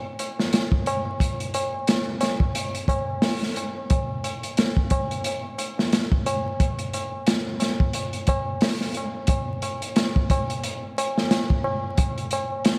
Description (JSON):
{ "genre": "trip hop", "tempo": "89 BPM", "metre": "4/4", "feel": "swing 58% on 16ths", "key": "none", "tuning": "none", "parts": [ { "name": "tabla", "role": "percussion", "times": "0.1-12.8 s", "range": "none", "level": "-32 LUFS", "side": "equal", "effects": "none" }, { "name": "crunchy breakbeat drum kit", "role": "drums", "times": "0.2-12.8 s", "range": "hi-hat, kick drum, snare drum", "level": "-25 LUFS", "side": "equal", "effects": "vintage 12-bit sampler grit" } ], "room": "wet cathedral reverb, RT60 5.1 s", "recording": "dreamy mix soaked in reverb, vinyl crackle", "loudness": "-25 LUFS", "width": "mono", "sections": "0.0-12.8 A section", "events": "none", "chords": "none" }